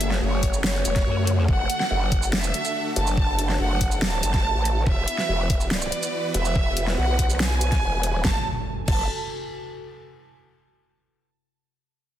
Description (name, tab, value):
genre	heavy wobble dubstep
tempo	142 BPM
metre	4/4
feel	half-time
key	F# minor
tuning	A4 = 444 Hz
part	warm chamber violin section	melody	0.0-9.0 s	C#5 to A5	-27 LUFS	right 2 dB	digital delay
part	supersaw chords	sustained chords	0.0-8.4 s	C#3 to C#5	-33 LUFS	right 1 dB	sidechain pumping
part	growl bass	bass	0.0-9.1 s	E1 to F#2	-24 LUFS	equal	chorus, overdrive
part	dubstep drum kit	drums	0.0-9.0 s	crash cymbal, hi-hat, shaker, snare drum	-28 LUFS	equal	overdrive
part	warbly tape-like pad	texture	0.0-9.9 s	A3 to G#5	-36 LUFS	left 4 dB	chorus, built-in reverb, sidechain pumping
part	electronic kick drum	drums	0.4-9.0 s	none	-23 LUFS	equal	overdrive
part	impact	sound effects	8.4-9.9 s	none	-34 LUFS	right 1 dB	none
room	light reverb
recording	dense, heavily limited modern master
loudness	-20 LUFS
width	side -11 dB against mid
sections	0.0-8.2 A section; 8.2-9.9 B section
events	fade-out on ambient pad 0.0-8.2; filter sweep on wobble bass 0.0-8.2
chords	0.0 F#madd9; 1.5 D/F#; 4.9 Esus2; 8.2 F#madd9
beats	0.22 0.64 1.06 | 1.49 1.91 2.33 2.75 | 3.17 3.60 4.02 4.44 | 4.87 5.29 5.71 6.13 | 6.55 6.98 7.40 7.82 | 8.24 8.67 9.09 9.51